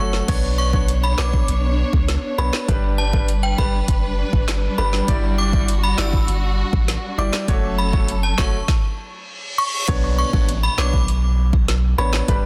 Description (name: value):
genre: dancehall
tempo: 100 BPM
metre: 4/4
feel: straight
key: B minor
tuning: A4 = 440 Hz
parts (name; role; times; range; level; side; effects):
- synth chime; melody; 0.0-12.1 s; G5 to E6; -28 LUFS; equal; ensemble chorus, phaser, delay
- clear grand piano; accompaniment; 0.0-12.5 s; G3 to D5; -29 LUFS; equal; none
- warm studio string section; sustained chords; 0.0-8.7 s; F#3 to C#5; -30 LUFS; equal; sidechain pumping
- punchy sub bass; bass; 0.0-12.5 s; F#1 to C#2; -23 LUFS; equal; none
- afro-pop drum kit; drums; 0.1-12.4 s; crash cymbal, handclaps, hi-hat, kick drum, snare drum; -23 LUFS; equal; none
- reverse cymbal and downlifter; sound effects; 9.1-12.5 s; none; -33 LUFS; equal; none
room: digital ambience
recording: dense, heavily limited modern master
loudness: -19 LUFS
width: mono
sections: 0.3-9.9 A section; 9.9-12.5 B section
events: reverse cymbal 9.1-9.9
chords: 0.3 Bmadd9; 2.7 G; 5.1 Em7/G; 7.5 F#m; 9.9 Bmadd9